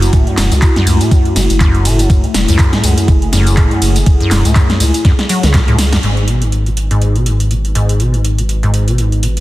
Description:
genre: acid house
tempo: 122 BPM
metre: 4/4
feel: swing 57% on 16ths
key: G# phrygian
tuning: A4 = 440 Hz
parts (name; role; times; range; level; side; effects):
- dark analog pad; sustained chords; 0.0-9.4 s; G#3 to B4; -20 LUFS; left 1 dB; chorus, phaser, sidechain pumping
- acid bass, square; riff; 0.0-9.3 s; F#2 to F#3; -15 LUFS; equal; lush chorus, analog delay
- saturated sub bass; bass; 0.0-9.4 s; E1 to C#2; -15 LUFS; equal; sidechain pumping
- electro analog drum machine; drums; 0.0-9.4 s; handclaps, hi-hat, ride cymbal, snare drum, tambourine; -18 LUFS; equal; overdrive
- electronic kick drum; drums; 0.1-5.7 s; none; -10 LUFS; equal; none
room: little or no reverb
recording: dense, heavily limited modern master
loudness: -10 LUFS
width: side -17 dB against mid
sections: 0.0-6.0 A section; 6.0-9.4 B section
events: drop 0.0-6.0; drum fill 5.0-6.0; band accent 5.9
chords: 0.0 F#m7; 6.0 G#m7

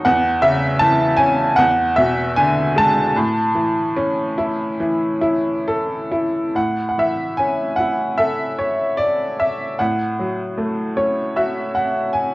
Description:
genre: classical, lyrical solo piano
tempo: 65-79 BPM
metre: 4/4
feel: rubato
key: A major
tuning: A4 = 440 Hz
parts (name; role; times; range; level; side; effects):
- bright upright piano; solo; 0.0-12.3 s; E2 to A5; -16 LUFS; equal; none
room: moderate recital hall reverb, RT60 1.5 s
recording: worn, warbling old tape, cassette tape, warbly pitch drift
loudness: -16 LUFS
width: side -20 dB against mid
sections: 0.0-6.6 A section; 6.6-12.3 B section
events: upright piano fill 10.6-12.3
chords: 0.1 E69; 1.6 E7; 3.2 A; 9.8 F#m/A

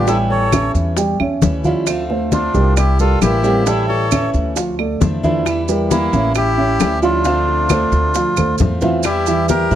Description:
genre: latin, Cuban son and guajira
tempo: 134 BPM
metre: 4/4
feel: straight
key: D minor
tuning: A4 = 445 Hz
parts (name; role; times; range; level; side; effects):
- melodica; melody; 0.0-9.8 s; E4 to C#5; -20 LUFS; right 2 dB; none
- bright trumpet; second line; 0.0-9.8 s; Bb3 to A4; -25 LUFS; left 11 dB; none
- picked acoustic archtop guitar; accompaniment; 0.0-9.8 s; D3 to F4; -24 LUFS; left 1 dB; none
- dark grand piano; arpeggios; 0.0-9.8 s; E3 to G5; -19 LUFS; right 3 dB; none
- upright bass; bass; 0.0-9.8 s; A1 to Bb2; -19 LUFS; equal; none
- bongos; percussion; 0.1-9.8 s; none; -22 LUFS; left 8 dB; none
- congas; percussion; 0.1-9.8 s; none; -22 LUFS; left 1 dB; none
- maracas; percussion; 0.1-9.8 s; none; -28 LUFS; right 18 dB; none
- claves; percussion; 0.5-9.3 s; none; -26 LUFS; right 18 dB; none
room: studio reverb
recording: dry, close 1970s-style studio recording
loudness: -14 LUFS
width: side -11 dB against mid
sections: 0.0-9.0 A section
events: drum fill 8.4-9.0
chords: 0.1 A7; 1.9 Dm7; 2.8 C7; 3.7 A7; 4.6 Dmadd9; 5.5 Edim; 6.4 A7; 7.2 Dm7; 9.0 Edim

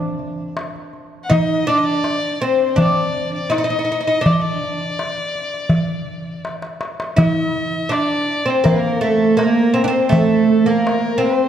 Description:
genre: Arabic maqam ensemble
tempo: 82 BPM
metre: 4/4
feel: straight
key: unclear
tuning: A4 = 440 Hz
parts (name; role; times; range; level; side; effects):
- oud; melody; 0.0-11.5 s; A3 to E4-50c; -17 LUFS; right 1 dB; none
- darbuka; percussion; 0.2-11.1 s; none; -20 LUFS; equal; none
- rich violin; second line; 1.2-11.5 s; A4 to F#5; -24 LUFS; left 3 dB; none
room: moderate concert hall reverb, RT60 2.2 s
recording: dark, warm production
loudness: -15 LUFS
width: side -9 dB against mid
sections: 0.0-7.2 A section; 7.2-11.5 B section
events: drum fill 6.5-7.2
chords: none

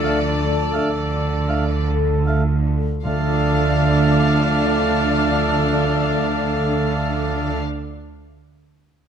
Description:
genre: classical, slow romantic movement for symphony orchestra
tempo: 26 BPM (dotted quarters)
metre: 6/8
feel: rubato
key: D minor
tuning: A4 = 440 Hz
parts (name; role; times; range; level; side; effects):
- rich chamber violin section; melody; 0.0-7.6 s; D5 to F5; -30 LUFS; left 3 dB; none
- clear clarinet; second line; 0.0-7.6 s; D4; -31 LUFS; right 1 dB; none
- clear oboe; second line; 0.0-7.6 s; F5; -29 LUFS; right 1 dB; none
- rich chamber violin section; second line; 0.0-7.6 s; D4; -28 LUFS; left 6 dB; none
- silver concert flute; second line; 0.0-7.6 s; D5; -30 LUFS; left 5 dB; none
- dark bassoon; accompaniment; 0.0-7.6 s; A3; -29 LUFS; right 2 dB; none
- rich studio viola section; accompaniment; 0.0-7.6 s; A3 to D4; -29 LUFS; equal; none
- mellow French horn section; sustained chords; 0.0-7.6 s; D3 to A3; -28 LUFS; left 1 dB; none
- mellow trombone section; sustained chords; 0.0-7.6 s; F3 to D4; -31 LUFS; right 2 dB; none
- concert harp; arpeggios; 0.0-8.0 s; D3 to D6; -30 LUFS; left 12 dB; none
- clear trumpet section; stabs; 0.0-7.6 s; A4; -28 LUFS; right 1 dB; none
- rich studio double bass section; bass; 0.0-7.6 s; D2; -24 LUFS; right 3 dB; none
- rich symphonic cello section; bass; 0.0-7.6 s; D3; -23 LUFS; right 3 dB; none
- timpani; percussion; 3.0-7.6 s; D3; -31 LUFS; right 1 dB; none
room: moderate scoring stage reverb, RT60 1.5 s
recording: none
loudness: -17 LUFS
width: side -8 dB against mid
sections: 0.0-3.0 A section; 3.0-7.6 B section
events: slowing down 0.0-3.0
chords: 0.0 Dm

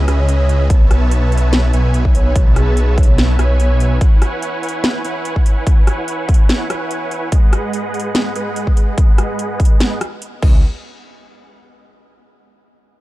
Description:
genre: future bass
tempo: 145 BPM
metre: 4/4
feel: half-time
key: unclear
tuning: A4 = 438 Hz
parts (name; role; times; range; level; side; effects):
- dense compressed supersaw; riff; 0.0-10.6 s; G#3 to A5; -22 LUFS; right 2 dB; sidechain pumping, low-pass filter, dub echo
- wide detuned saw bass; bass; 0.0-4.0, 10.4-10.6 s; B1 to C#2; -14 LUFS; equal; chorus, sidechain pumping
- trap drum kit; drums; 0.1-10.5 s; crash cymbal, hi-hat, rim click, snare drum; -22 LUFS; equal; overdrive
- vibraphone with soft mallets; melody; 0.2-4.0 s; G#4 to E5; -26 LUFS; right 2 dB; sidechain pumping, dub echo
- electronic kick drum; drums; 0.7-10.5 s; none; -11 LUFS; equal; none
room: little or no reverb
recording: dark, warm production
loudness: -12 LUFS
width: side -17 dB against mid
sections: 0.0-10.6 A section; 10.6-12.3 B section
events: filter sweep on supersaw synth 0.0-10.6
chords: 0.0 C#m7; 0.7 B7sus4; 4.0 E6; 7.3 G#m7; 10.4 C#m7; 10.6 N.C.

